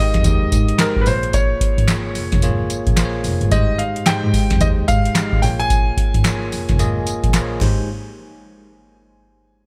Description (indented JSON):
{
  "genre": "R&B, new jack swing",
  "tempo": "110 BPM",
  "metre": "4/4",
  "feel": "swing 62% on 16ths",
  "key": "unclear",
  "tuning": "A4 = 439 Hz",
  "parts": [
    { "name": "clear concert grand piano", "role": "melody", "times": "0.0-7.3 s", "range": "Bb4 to Ab5", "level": "-26 LUFS", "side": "equal", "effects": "delay" },
    { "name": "bell-like tine electric piano", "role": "accompaniment", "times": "0.0-7.9 s", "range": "Ab3 to Eb5", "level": "-27 LUFS", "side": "equal", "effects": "none" },
    { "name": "warm double bass", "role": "bass", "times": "0.1-7.9 s", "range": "F1 to Ab2", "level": "-23 LUFS", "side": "equal", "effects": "none" },
    { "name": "booming analog drum machine", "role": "drums", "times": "0.1-7.8 s", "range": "crash cymbal, handclaps, hi-hat, kick drum, snare drum, tambourine", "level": "-20 LUFS", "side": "equal", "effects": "gated reverb" },
    { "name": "group handclap", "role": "percussion", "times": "0.8-7.9 s", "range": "none", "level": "barely audible", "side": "none", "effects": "none" }
  ],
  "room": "small room ambience",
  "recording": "bright 1980s-style digital production, faint mains hum",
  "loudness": "-18 LUFS",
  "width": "mono",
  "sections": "0.0-7.9 A section; 7.9-9.7 B section",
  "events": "none",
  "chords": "0.0 Abmaj7; 1.1 Bbm7; 3.5 Abmaj7; 5.4 Bbm7; 7.6 Abmaj7; 7.9 N.C."
}